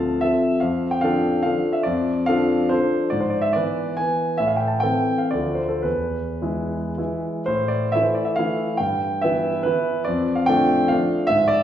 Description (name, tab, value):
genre	classical, romantic triple-time dance for piano with dotted rhythms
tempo	101-159 BPM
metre	3/4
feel	rubato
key	A minor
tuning	A4 = 440 Hz
part	warm concert grand piano	solo	0.0-11.6 s	D2 to A5	-19 LUFS	equal	none
room	wet recital hall reverb, RT60 1.3 s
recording	heard from further back in the room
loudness	-19 LUFS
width	side -10 dB against mid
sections	0.0-7.5 A section; 7.5-11.6 B section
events	none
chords	0.0 Dm7; 0.6 Dm/F; 3.1 E7/G#; 4.4 Am; 5.3 Dm; 5.9 E; 7.5 A5; 8.8 Em/G; 10.1 Dm/F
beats	0.23 | 0.63 1.04 1.45 | 1.85 2.27 2.70 | 3.12 3.54 3.99 | 4.40 4.84 5.34 | 5.85 6.43 6.98 | 7.48 7.93 8.38 | 8.79 9.23 9.66 | 10.07 10.49 10.91 | 11.30